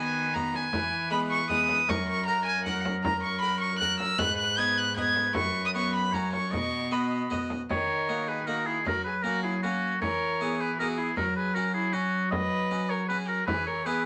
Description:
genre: classical, renaissance-style consort dance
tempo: 156 BPM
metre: 3/4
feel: straight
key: unclear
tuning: A4 = 440 Hz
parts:
  - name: clear oboe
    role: melody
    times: 0.0-14.0 s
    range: F#4 to D#5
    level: -34 LUFS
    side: equal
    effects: none
  - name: rich violin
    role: second line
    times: 0.0-14.0 s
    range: C#4 to G#6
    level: -32 LUFS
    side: equal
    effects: none
  - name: harpsichord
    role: accompaniment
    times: 0.0-14.1 s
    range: F#2 to D#5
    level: -37 LUFS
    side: equal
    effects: none
  - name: rich cello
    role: bass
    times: 0.0-14.1 s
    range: F#2 to F#3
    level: -37 LUFS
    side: equal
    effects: none
  - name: frame drum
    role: percussion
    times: 0.4-13.7 s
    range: none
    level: -37 LUFS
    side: equal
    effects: none
room: moderate studio reverb, RT60 0.6 s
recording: none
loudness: -28 LUFS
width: mono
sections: 0.0-7.7 A section; 7.7-14.1 B section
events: none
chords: 0.0 B/D#; 0.7 E; 1.9 F#; 4.2 G#m; 5.4 F#sus4; 6.1 F#; 6.5 B; 7.7 D#m; 8.9 F#; 10.0 E; 11.2 F#5; 13.5 E

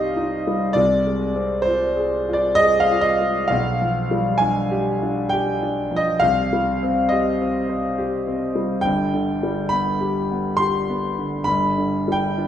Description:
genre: classical, romantic nocturne for solo piano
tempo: 67 BPM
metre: 3/4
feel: rubato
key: unclear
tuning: A4 = 440 Hz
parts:
  - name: warm concert grand piano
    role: solo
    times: 0.0-12.5 s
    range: G1 to C6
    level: -18 LUFS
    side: equal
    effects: none
room: wet recital hall reverb, RT60 1.3 s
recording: recorded in a church or concert hall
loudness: -18 LUFS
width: side -10 dB against mid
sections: 0.0-12.5 A section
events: none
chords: 0.0 Cm; 0.8 Fm/C; 3.5 G7/B; 6.2 Cm; 8.9 G; 11.5 G5

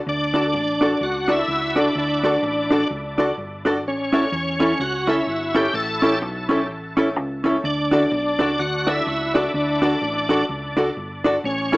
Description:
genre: ska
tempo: 126 BPM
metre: 4/4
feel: swing 60% on 8ths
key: D major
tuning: A4 = 440 Hz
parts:
  - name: bright tonewheel organ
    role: melody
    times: 0.1-11.8 s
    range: C#4 to A4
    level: -22 LUFS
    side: equal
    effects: overdrive, chorus vibrato, slow rotary speaker, dub echo
  - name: hollow-body short-scale fingered electric bass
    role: bass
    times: 0.1-11.8 s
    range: G1 to E2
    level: -31 LUFS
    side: equal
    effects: none
  - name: hollow-body jazz guitar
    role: accompaniment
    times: 0.3-11.8 s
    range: C#4 to A4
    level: -23 LUFS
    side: right 1 dB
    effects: dub echo
  - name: warm upright piano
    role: stabs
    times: 0.3-11.8 s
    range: C#4 to D5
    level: -25 LUFS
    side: left 1 dB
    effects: dub echo
room: wet studio reverb, RT60 0.6 s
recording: small speaker sound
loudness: -18 LUFS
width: side -21 dB against mid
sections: 0.1-11.8 A section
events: none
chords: 0.1 D; 3.8 A; 7.6 D

